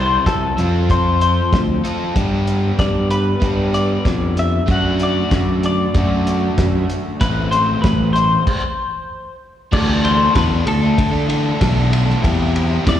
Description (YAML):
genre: indie rock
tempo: 95 BPM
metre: 4/4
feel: straight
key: D mixolydian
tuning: A4 = 439 Hz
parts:
  - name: twelve-string electric guitar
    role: melody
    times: 0.0-13.0 s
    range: A4 to F#5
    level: -21 LUFS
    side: left 3 dB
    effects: slapback echo, analog delay
  - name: crunchy overdriven guitar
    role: riff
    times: 0.0-13.0 s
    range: E3 to A4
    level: -21 LUFS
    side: equal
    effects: slapback echo
  - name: modern bright picked electric bass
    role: bass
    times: 0.0-13.0 s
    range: A1 to D3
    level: -18 LUFS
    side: equal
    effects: none
  - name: cloth-damped thuddy drum kit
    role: drums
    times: 0.3-13.0 s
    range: crash cymbal, hi-hat, kick drum, ride cymbal, snare drum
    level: -20 LUFS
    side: equal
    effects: none
room: small room ambience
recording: live gig heard through the venue's PA, recital hall reverb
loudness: -14 LUFS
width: side -10 dB against mid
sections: 0.0-9.7 A section; 9.7-13.0 B section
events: stop 8.5-9.7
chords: 0.0 C; 0.6 F; 2.2 G; 4.7 D/F#; 7.2 Am; 9.7 Dsus2; 12.2 C/E